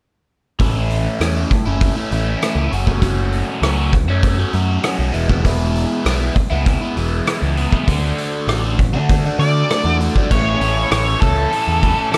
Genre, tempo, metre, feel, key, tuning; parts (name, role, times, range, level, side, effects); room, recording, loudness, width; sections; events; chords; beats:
indie rock; 99 BPM; 4/4; straight; A major; A4 = 440 Hz
overdriven electric guitar; riff; 0.6-12.2 s; A2 to F#4; -23 LUFS; equal; phaser
growling picked electric bass; bass; 0.6-11.9 s; E1 to D3; -21 LUFS; equal; overdrive
loose indie drum kit; drums; 0.6-12.2 s; crash cymbal, hi-hat, kick drum, rim click; -22 LUFS; equal
octave-fuzz lead guitar; melody; 9.4-12.2 s; A4 to D5; -22 LUFS; equal; distortion, analog delay
light reverb, small room reverb; dark, warm production; -17 LUFS; mono
0.6-10.3 A section; 10.3-12.2 B section
0.6 A; 2.7 F#m; 5.1 E; 7.9 D; 10.3 A
| 0.60 1.20 1.81 2.42 | 3.02 3.63 4.23 4.84 | 5.45 6.05 6.66 7.27 | 7.87 8.48 9.09 9.70 | 10.30 10.91 11.52 12.13